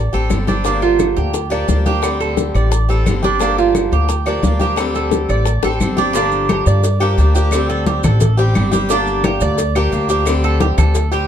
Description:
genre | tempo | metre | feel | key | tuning
latin, Cuban son and guajira | 175 BPM | 4/4 | straight | G minor | A4 = 438 Hz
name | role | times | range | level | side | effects
Cuban tres | arpeggios | 0.0-11.3 s | D4 to D5 | -20 LUFS | right 7 dB | none
upright bass | bass | 0.0-11.3 s | G1 to G2 | -17 LUFS | equal | none
picked swing-style acoustic guitar | accompaniment | 0.1-11.3 s | D3 to G4 | -20 LUFS | left 3 dB | none
congas | percussion | 0.1-11.3 s | none | -23 LUFS | left 2 dB | none
maracas | percussion | 0.1-11.3 s | none | -32 LUFS | right 6 dB | none
bongos and cowbell | percussion | 0.3-11.1 s | none | -24 LUFS | left 6 dB | none
claves | percussion | 0.3-11.0 s | none | -32 LUFS | left 2 dB | none
room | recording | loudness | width
little or no reverb | dark, warm production, faint mains hum | -13 LUFS | side -9 dB against mid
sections
0.0-6.2 A section; 6.2-11.3 B section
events
drum fill 5.6-6.2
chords
0.0 D7sus4; 0.7 Gm7; 2.0 D7sus4; 3.4 Gm7; 4.8 D7sus4; 6.2 Gm7; 7.5 D7sus4; 8.9 Gm7; 10.3 D7sus4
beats
0.31 | 0.66 1.00 1.34 1.69 | 2.03 2.38 2.72 3.06 | 3.41 3.75 4.09 4.44 | 4.78 5.12 5.47 5.81 | 6.15 6.50 6.84 7.18 | 7.52 7.87 8.21 8.55 | 8.90 9.24 9.58 9.93 | 10.27 10.61 10.96

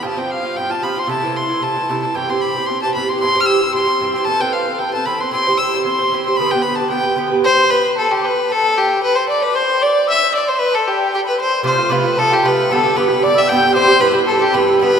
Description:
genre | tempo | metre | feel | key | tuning
celtic folk, Celtic reel | 228 BPM | 4/4 | swing 53% on 8ths | unclear | A4 = 439 Hz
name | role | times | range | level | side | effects
warm fiddle | melody | 0.0-15.0 s | G4 to F6 | -15 LUFS | left 1 dB | none
Irish bouzouki | accompaniment | 0.0-7.5, 11.6-15.0 s | G2 to C5 | -18 LUFS | right 2 dB | none
mellow hollow mid whistle | second line | 7.4-15.0 s | G5 to G6 | -23 LUFS | left 3 dB | none
room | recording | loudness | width
wet cathedral reverb, RT60 4.6 s | recorded in a church or concert hall | -14 LUFS | side -7 dB against mid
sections
0.0-7.4 A section; 7.4-15.0 B section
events
none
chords
0.1 Fsus2; 1.1 Am; 2.2 C; 4.3 Amadd9; 5.3 C; 6.4 G; 7.4 N.C.; 11.6 F; 12.7 G; 13.7 C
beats
| 0.05 0.32 0.58 0.84 | 1.11 1.37 1.64 1.90 | 2.16 2.43 2.69 2.96 | 3.22 3.48 3.75 4.01 | 4.28 4.54 4.80 5.07 | 5.33 5.60 5.86 6.12 | 6.39 6.65 6.92 7.18 | 7.44 7.71 7.97 8.23 | 8.49 8.76 9.02 9.28 | 9.54 9.81 10.07 10.33 | 10.59 10.86 11.12 11.38 | 11.64 11.91 12.17 12.43 | 12.70 12.96 13.22 13.49 | 13.75 14.01 14.28 14.54 | 14.80

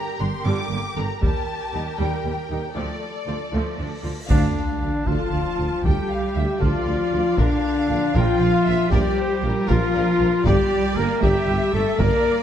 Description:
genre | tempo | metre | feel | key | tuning
cinematic, epic orchestral film score | 78 BPM (dotted quarters) | 6/8 | straight | D minor | A4 = 440 Hz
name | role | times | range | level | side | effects
warm symphonic violin section | melody | 0.0-12.2 s | A4 to D6 | -34 LUFS | left 3 dB | none
warm symphonic violin section | second line | 0.0-12.4 s | G4 to A5 | -30 LUFS | equal | none
warm symphonic viola section | accompaniment | 0.2-12.4 s | D3 to Bb4 | -30 LUFS | right 1 dB | none
rich symphonic cello section | bass | 0.2-12.4 s | D2 to Bb3 | -28 LUFS | right 3 dB | none
warm symphonic double bass section | bass | 0.2-12.1 s | G1 to Eb2 | -26 LUFS | right 3 dB | none
taiko ensemble | drums | 1.2-12.4 s | none | -24 LUFS | equal | none
cymbal swell and sub drop | sound effects | 3.9-5.8 s | none | -32 LUFS | left 1 dB | none
mellow French horn section | sustained chords | 4.3-12.4 s | D4 to Bb4 | -23 LUFS | left 5 dB | none
warm trumpet | stabs | 4.3-12.4 s | D4 to Bb4 | -28 LUFS | right 1 dB | none
mellow tuba | bass | 4.3-12.1 s | G1 to D2 | -28 LUFS | right 2 dB | none
room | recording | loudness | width
moderate scoring stage reverb, RT60 1.5 s | dark, warm production | -19 LUFS | side -10 dB against mid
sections
0.0-4.3 A section; 4.3-12.4 A section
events
cymbal swell 3.9-4.3; band accent 4.3-4.8; impact 4.3-5.8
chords
0.0 Gm; 1.2 Eb; 2.8 Dm; 7.4 Bb; 10.5 Gm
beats
0.45 | 1.22 1.99 | 2.76 3.53 | 4.30 5.07 | 5.84 6.61 | 7.38 8.15 | 8.92 9.69 | 10.46 11.23 | 12.00

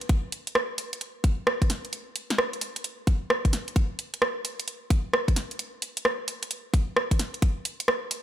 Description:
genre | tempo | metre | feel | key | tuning
UK garage | 131 BPM | 4/4 | swing 65% on 16ths | none | none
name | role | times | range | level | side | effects
garage drum kit | drums | 0.0-8.2 s | hi-hat, rim click, snare drum | -26 LUFS | right 1 dB | overdrive, studio reverb
electronic kick drum | drums | 0.1-7.5 s | none | -22 LUFS | equal | overdrive, studio reverb
room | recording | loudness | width
little or no reverb | none | -25 LUFS | side -12 dB against mid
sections
0.0-8.2 A section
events
none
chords
none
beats
| 0.10 0.55 1.01 1.47 | 1.93 2.38 2.84 3.30 | 3.76 4.22 4.67 5.13 | 5.59 6.05 6.51 6.97 | 7.42 7.88

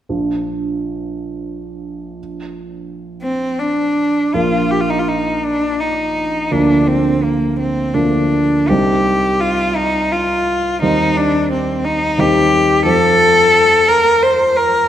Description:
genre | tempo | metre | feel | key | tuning
classical, romantic duo for cello and grand piano | 77-90 BPM | 3/4 | rubato | Bb major | A4 = 439 Hz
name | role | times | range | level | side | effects
dark grand piano | accompaniment | 0.1-14.9 s | Bb1 to F4 | -18 LUFS | right 2 dB | none
rich cello | melody | 3.2-14.9 s | Bb3 to C5 | -14 LUFS | left 1 dB | none
room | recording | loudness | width
wet scoring stage reverb, RT60 1.6 s | none | -13 LUFS | side -10 dB against mid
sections
0.1-4.3 A section; 4.3-14.9 B section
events
none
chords
0.1 Bb; 6.5 Bb/D; 8.7 Cm; 10.8 Cm/Eb; 12.8 F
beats
| 0.10 0.81 1.50 | 2.18 2.87 3.58 | 4.34 5.09 5.80 | 6.51 7.23 7.94 | 8.69 9.41 10.12 | 10.82 11.51 12.18 | 12.85 13.53 14.22

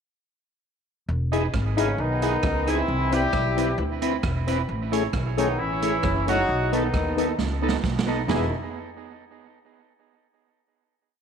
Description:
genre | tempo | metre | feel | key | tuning
ska | 133 BPM | 4/4 | swing 53% on 8ths | E major | A4 = 440 Hz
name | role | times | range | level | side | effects
upright bass | bass | 1.1-8.5 s | E1 to D#2 | -27 LUFS | equal | none
clean electric guitar | accompaniment | 1.3-8.4 s | B3 to C#5 | -29 LUFS | right 10 dB | spring reverb, tape echo
tonewheel organ | stabs | 1.3-8.5 s | A3 to B4 | -29 LUFS | left 11 dB | chorus vibrato, slow rotary speaker
swinging big-band drum kit | drums | 1.3-8.4 s | hi-hat, kick drum, rim click, snare drum, toms | -29 LUFS | right 3 dB | none
mellow horn section | melody | 1.8-8.5 s | C#3 to G4 | -25 LUFS | left 1 dB | none
room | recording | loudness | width
moderate echo chamber reverb, RT60 1.3 s, studio ambience | 1960s-style stereo with parts hard left and right | -22 LUFS | side -7 dB against mid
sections
1.1-8.3 head; 8.3-10.1 final chord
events
drum fill 7.4-8.3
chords
1.1 Emaj7; 2.9 Cmaj7; 4.7 Amaj7; 6.5 B7; 8.3 Emaj7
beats
| 1.09 1.54 1.99 2.44 | 2.88 3.33 3.79 4.24 | 4.68 5.13 5.58 6.04 | 6.49 6.93 7.38 7.83 | 8.28

